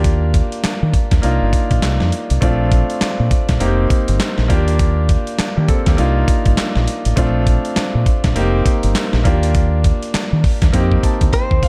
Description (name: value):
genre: R&B, new jack swing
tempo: 101 BPM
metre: 4/4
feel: swing 60% on 16ths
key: unclear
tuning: A4 = 440 Hz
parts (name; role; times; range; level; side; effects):
- clear grand piano; accompaniment; 0.0-11.7 s; A3 to A5; -23 LUFS; equal; none
- deep dub fingered electric bass; bass; 0.0-11.6 s; F1 to Eb3; -19 LUFS; equal; none
- dusty soul sampler-style drum kit; drums; 0.0-11.7 s; handclaps, hi-hat, kick drum, snare drum; -19 LUFS; equal; gated reverb
- direct-recorded clean electric guitar; melody; 11.3-11.7 s; C5; -22 LUFS; equal; none
room: digital ambience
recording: none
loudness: -16 LUFS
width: mono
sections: 0.0-11.7 A section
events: drum fill 10.7-11.7; grand piano fill 10.7-11.7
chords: 0.0 Ebmaj7; 1.2 Cm11; 2.4 Bbmaj7; 3.6 F7sus4; 4.5 Ebmaj7; 6.0 Cm11; 7.2 Bbmaj7; 8.4 F7sus4; 9.3 Ebmaj7; 10.7 F7sus4